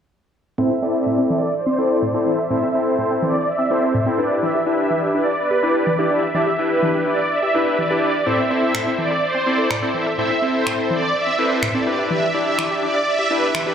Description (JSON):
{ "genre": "dance-pop", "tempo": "125 BPM", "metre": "4/4", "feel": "straight", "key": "A minor", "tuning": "A4 = 440 Hz", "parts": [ { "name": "big bright polysynth", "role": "accompaniment", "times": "0.6-13.7 s", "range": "C4 to D5", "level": "-20 LUFS", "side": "left 1 dB", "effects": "low-pass filter, slapback echo" }, { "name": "wide unison pluck", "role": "arpeggios", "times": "0.6-13.7 s", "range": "A2 to E5", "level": "-26 LUFS", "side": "left 2 dB", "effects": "low-pass filter, slapback echo, tape echo" }, { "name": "electronic finger snaps", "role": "drums", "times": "8.7-13.7 s", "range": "none", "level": "-26 LUFS", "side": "equal", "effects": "none" } ], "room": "moderate plate reverb, RT60 1.3 s, digital ambience", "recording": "live gig heard through the venue's PA, club reverb", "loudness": "-17 LUFS", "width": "side -8 dB against mid", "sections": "0.6-13.7 A section", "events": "filter sweep 0.6-13.7", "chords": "0.6 Am; 4.2 Em7; 8.3 Am; 11.9 Em7", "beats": "| 0.58 1.06 1.54 2.02 | 2.50 2.98 3.46 3.94 | 4.42 4.91 5.38 5.87 | 6.34 6.83 7.30 7.79 | 8.27 8.74 9.22 9.71 | 10.19 10.66 11.14 11.62 | 12.11 12.59 13.06 13.54" }